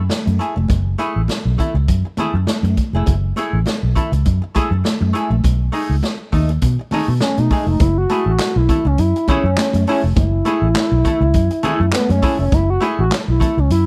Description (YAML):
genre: funk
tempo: 102 BPM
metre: 4/4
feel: swing 56% on 16ths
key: F# dorian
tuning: A4 = 440 Hz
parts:
  - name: archtop guitar, miked and amplified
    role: accompaniment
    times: 0.0-13.8 s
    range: A3 to A4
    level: -25 LUFS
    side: equal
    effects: wah
  - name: vintage muted fingered electric bass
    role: bass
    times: 0.0-13.8 s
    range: E#1 to B2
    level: -19 LUFS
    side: equal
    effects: none
  - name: swinging big-band drum kit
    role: drums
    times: 0.1-13.9 s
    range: handclaps, hi-hat, kick drum, snare drum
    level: -22 LUFS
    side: equal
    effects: none
  - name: congas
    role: percussion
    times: 0.1-13.6 s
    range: none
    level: -27 LUFS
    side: equal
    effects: none
  - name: expressive synth lead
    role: melody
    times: 7.2-13.8 s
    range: B3 to F#4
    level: -22 LUFS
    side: equal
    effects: chorus
room: little or no reverb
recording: none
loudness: -17 LUFS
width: mono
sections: 0.0-7.8 A section; 7.8-13.9 B section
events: none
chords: 0.0 F#m9; 5.4 B13; 7.8 F#m9